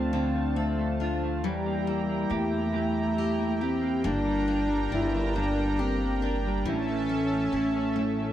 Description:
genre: six-eight pop ballad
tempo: 46 BPM (dotted quarters)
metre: 6/8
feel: straight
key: unclear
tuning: A4 = 439 Hz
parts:
  - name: breathy bass clarinet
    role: melody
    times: 0.0-8.3 s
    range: G3 to E4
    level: -29 LUFS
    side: equal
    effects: none
  - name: direct-recorded clean electric guitar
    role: accompaniment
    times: 0.0-8.3 s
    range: G2 to G4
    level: -33 LUFS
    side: right 1 dB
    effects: double-tracked left and right
  - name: warm analog pad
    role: sustained chords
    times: 0.0-8.3 s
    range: C#4 to Bb5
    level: -33 LUFS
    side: right 1 dB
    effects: chorus
  - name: picked steel-string acoustic guitar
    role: arpeggios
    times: 0.0-8.3 s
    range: E3 to A4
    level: -37 LUFS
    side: left 8 dB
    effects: none
  - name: upright bass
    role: bass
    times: 0.0-8.3 s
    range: G1 to E2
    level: -32 LUFS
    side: equal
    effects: none
room: light reverb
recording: dry, close 1970s-style studio recording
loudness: -25 LUFS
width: side -11 dB against mid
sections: 0.0-8.3 A section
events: none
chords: 0.0 Dm7; 1.4 Edim; 4.0 Gm; 6.7 A

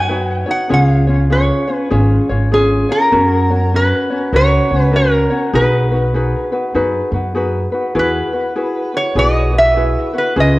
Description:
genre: Hawaiian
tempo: 99 BPM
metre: 4/4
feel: swing 63% on 8ths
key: B major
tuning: A4 = 441 Hz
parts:
  - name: lap resonator guitar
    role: melody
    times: 0.0-10.6 s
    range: G#4 to G#5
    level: -16 LUFS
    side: equal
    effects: analog delay
  - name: ukulele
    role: accompaniment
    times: 0.0-10.6 s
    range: C#4 to C#5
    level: -18 LUFS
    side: left 1 dB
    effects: none
  - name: upright bass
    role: bass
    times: 0.0-10.6 s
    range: G#1 to F#2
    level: -16 LUFS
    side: equal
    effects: transformer saturation
room: moderate recital hall reverb, RT60 1.6 s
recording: worn, warbling old tape, cassette tape, warbly pitch drift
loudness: -12 LUFS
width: side -19 dB against mid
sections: 0.0-8.0 A section; 8.0-10.6 B section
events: none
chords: 0.0 Badd9; 0.7 C#; 3.1 F#; 5.5 B6; 8.0 Eadd9

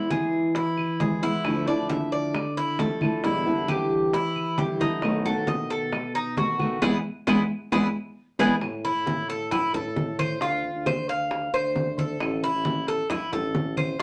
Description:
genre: latin, Cuban son and guajira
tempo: 134 BPM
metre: 4/4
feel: straight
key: A minor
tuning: A4 = 439 Hz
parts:
  - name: nylon-string guitar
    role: accompaniment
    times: 0.0-8.5 s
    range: B2 to F#4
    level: -29 LUFS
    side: equal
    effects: none
  - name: Cuban tres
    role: arpeggios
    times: 0.0-14.0 s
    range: B3 to F5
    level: -29 LUFS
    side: equal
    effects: none
  - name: warm tuba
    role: bass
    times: 0.0-14.0 s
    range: A1 to E3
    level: -34 LUFS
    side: equal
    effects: none
  - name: bongos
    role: percussion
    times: 0.1-14.0 s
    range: none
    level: -36 LUFS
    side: equal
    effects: none
  - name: claves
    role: percussion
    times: 0.1-14.0 s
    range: none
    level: -38 LUFS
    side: equal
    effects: none
  - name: congas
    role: percussion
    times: 0.1-14.0 s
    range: none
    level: -34 LUFS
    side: equal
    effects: none
room: wet club reverb, RT60 0.5 s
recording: none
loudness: -26 LUFS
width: mono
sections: 0.0-8.6 A section; 8.6-14.0 B section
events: band accent 6.8-8.6; drum fill 7.7-8.6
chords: 0.0 E; 1.4 Dmadd9; 3.2 Em7; 5.0 B7; 6.8 E; 8.6 Am; 10.4 Dm7; 12.2 Am

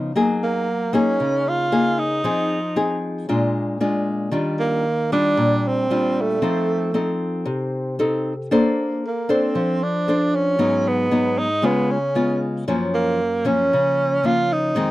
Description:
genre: bossa nova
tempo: 115 BPM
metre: 4/4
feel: straight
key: unclear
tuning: A4 = 440 Hz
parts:
  - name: nylon-string guitar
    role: accompaniment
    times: 0.0-14.9 s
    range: F2 to C5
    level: -20 LUFS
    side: left 1 dB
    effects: none
  - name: breathy tenor saxophone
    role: melody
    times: 0.4-14.9 s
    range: A3 to F4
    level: -21 LUFS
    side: right 2 dB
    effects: none
room: light reverb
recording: dry, close 1970s-style studio recording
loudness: -18 LUFS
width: side -16 dB against mid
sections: 0.0-12.7 A section; 12.7-14.9 B section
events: none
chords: 0.2 Gb69; 2.2 Fm7; 3.3 Bb7; 4.3 Ebmaj9; 6.4 F7; 8.5 Bbmaj9; 10.6 Abm7; 11.6 Db7; 12.7 Gbmaj7

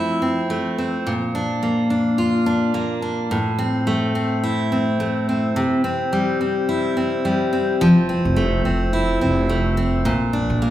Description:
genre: pop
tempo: 107 BPM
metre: 4/4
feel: swing 55% on 16ths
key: F major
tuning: A4 = 439 Hz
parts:
  - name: picked steel-string acoustic guitar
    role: accompaniment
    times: 0.0-10.7 s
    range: A2 to F4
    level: -18 LUFS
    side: equal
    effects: none
  - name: upright bass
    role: bass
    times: 7.8-10.7 s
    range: F1 to Bb1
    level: -22 LUFS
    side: equal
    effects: none
room: wet recital hall reverb, RT60 1.3 s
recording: recorded in a church or concert hall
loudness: -18 LUFS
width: side -12 dB against mid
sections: 0.0-10.7 A section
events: none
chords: 0.0 Fmaj7; 1.1 Bb; 3.3 Am; 5.6 C; 7.8 Fmaj7; 10.1 Bb

